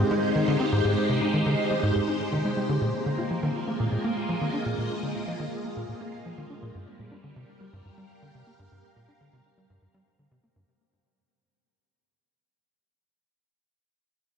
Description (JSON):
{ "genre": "ambient", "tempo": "122 BPM", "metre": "4/4", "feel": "straight", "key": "unclear", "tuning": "A4 = 440 Hz", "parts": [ { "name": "phased string machine", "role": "sustained chords", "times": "0.0-10.7 s", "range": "G3 to F5", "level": "-28 LUFS", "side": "equal", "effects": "ensemble chorus, phaser, shimmer reverb" }, { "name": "concert harp", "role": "arpeggios", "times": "0.0-13.5 s", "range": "C3 to C5", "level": "-37 LUFS", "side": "left 1 dB", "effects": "auto-pan, shimmer reverb, ping-pong delay" }, { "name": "tight sequencer bass", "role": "riff", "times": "0.0-10.6 s", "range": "G2 to F4", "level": "-28 LUFS", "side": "equal", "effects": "lush chorus, ping-pong delay" } ], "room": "wet lush hall reverb, RT60 2.9 s", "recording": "dreamy mix soaked in reverb, cassette tape", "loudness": "-24 LUFS", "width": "side -7 dB against mid", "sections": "0.0-10.7 A section", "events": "fade-out on harp 0.0-10.7; fade-out 0.0-10.7; filter sweep on analog synth bass 0.0-10.7", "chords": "0.0 Abmaj7; 2.8 Bb7sus4; 6.7 Gm7", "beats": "0.35 | 0.84 1.34 1.83 2.32 | 2.81 3.30 3.80 4.29 | 4.78 5.27 5.76 6.25 | 6.75 7.24 7.73 8.22 | 8.71 9.21 9.70 10.19" }